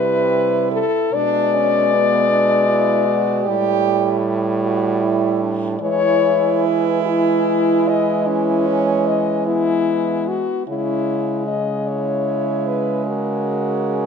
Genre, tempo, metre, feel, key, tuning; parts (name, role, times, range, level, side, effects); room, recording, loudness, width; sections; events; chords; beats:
classical, lyrical piece for horn quartet; 46-52 BPM (dotted quarters); 12/8; rubato; A4 = 443 Hz
warm French horn; melody; 0.0-14.1 s; E4 to D#5; -19 LUFS; left 6 dB
clear French horn; second line; 0.0-14.1 s; B3 to G4; -23 LUFS; right 15 dB
clear French horn; accompaniment; 0.0-14.1 s; G3 to G#3; -24 LUFS; equal
warm French horn; bass; 0.0-14.1 s; A2 to E3; -22 LUFS; right 3 dB
light reverb; close, detailed microphones; -16 LUFS; side -6 dB against mid
0.0-14.1 A section
0.0 Am7; 1.1 G#dim/B; 3.5 A7sus4; 5.8 E; 10.7 A#m7b5/C#
| 1.13 2.31 3.46 4.63 | 5.81 7.07 8.27 9.47 | 10.68 11.89 13.07